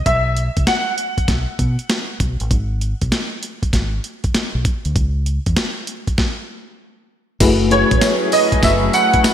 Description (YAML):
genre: R&B, new jack swing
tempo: 98 BPM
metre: 4/4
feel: swing 66% on 16ths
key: F# minor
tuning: A4 = 441 Hz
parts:
  - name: clear baby grand piano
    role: melody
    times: 0.0-2.2, 7.7-9.3 s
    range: C#5 to F#5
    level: -18 LUFS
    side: right 1 dB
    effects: ensemble chorus
  - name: deep dub fingered electric bass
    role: bass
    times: 0.0-9.3 s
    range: F#1 to B2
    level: -20 LUFS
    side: equal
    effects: none
  - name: dusty soul sampler-style drum kit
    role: drums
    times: 0.1-9.3 s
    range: crash cymbal, hi-hat, kick drum, snare drum, tambourine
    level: -19 LUFS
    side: equal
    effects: overdrive, gated reverb
  - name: FM electric piano with tremolo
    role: accompaniment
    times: 7.4-9.3 s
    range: A3 to B4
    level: -18 LUFS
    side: left 4 dB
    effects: none
  - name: phased analog pad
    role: sustained chords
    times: 7.8-9.3 s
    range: F#3 to B4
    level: -22 LUFS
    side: right 1 dB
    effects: phaser, chorus
  - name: cowbell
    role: percussion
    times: 7.4-9.3 s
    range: none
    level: -33 LUFS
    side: right 5 dB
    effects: none
room: moderate lush hall reverb, RT60 1.6 s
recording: bright 1980s-style digital production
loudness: -15 LUFS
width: side -10 dB against mid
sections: 0.0-7.4 A section; 7.4-9.3 B section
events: stop 6.2-7.4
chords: 0.1 Bsus4; 2.5 N.C.; 7.4 F#m11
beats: | 0.06 0.67 1.28 1.90 | 2.51 3.12 3.73 4.34 | 4.96 5.57 6.18 6.79 | 7.41 8.02 8.63 9.24